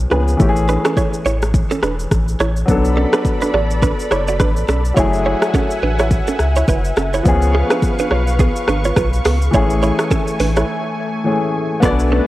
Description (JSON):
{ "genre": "afrobeats", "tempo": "105 BPM", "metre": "4/4", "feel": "swing 58% on 16ths", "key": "unclear", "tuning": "A4 = 438 Hz", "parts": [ { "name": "warm baby grand piano", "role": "accompaniment", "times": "0.0-12.3 s", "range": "E3 to D5", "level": "-21 LUFS", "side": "left 2 dB", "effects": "none" }, { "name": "saturated sub bass", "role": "bass", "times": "0.0-12.2 s", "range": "E1 to C#2", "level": "-18 LUFS", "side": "equal", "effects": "none" }, { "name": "direct-recorded clean electric guitar", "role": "riff", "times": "0.1-12.2 s", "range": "B3 to D5", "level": "-21 LUFS", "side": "right 4 dB", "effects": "spring reverb, tape echo" }, { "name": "afro-pop drum kit", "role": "drums", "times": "0.1-12.1 s", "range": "hi-hat, kick drum, rim click, shaker", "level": "-18 LUFS", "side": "equal", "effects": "none" }, { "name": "lush unison pad", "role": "sustained chords", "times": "2.7-12.3 s", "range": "A3 to C#6", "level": "-23 LUFS", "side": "equal", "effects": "chorus" } ], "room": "light reverb", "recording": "worn, warbling old tape, cassette tape, warbly pitch drift", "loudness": "-14 LUFS", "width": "side -16 dB against mid", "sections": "0.0-2.7 A section; 2.7-11.8 B section", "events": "break 10.7-11.8", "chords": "0.4 Amaj7; 2.7 Bm7; 5.0 F#m9; 7.3 C#7; 9.5 Amaj7" }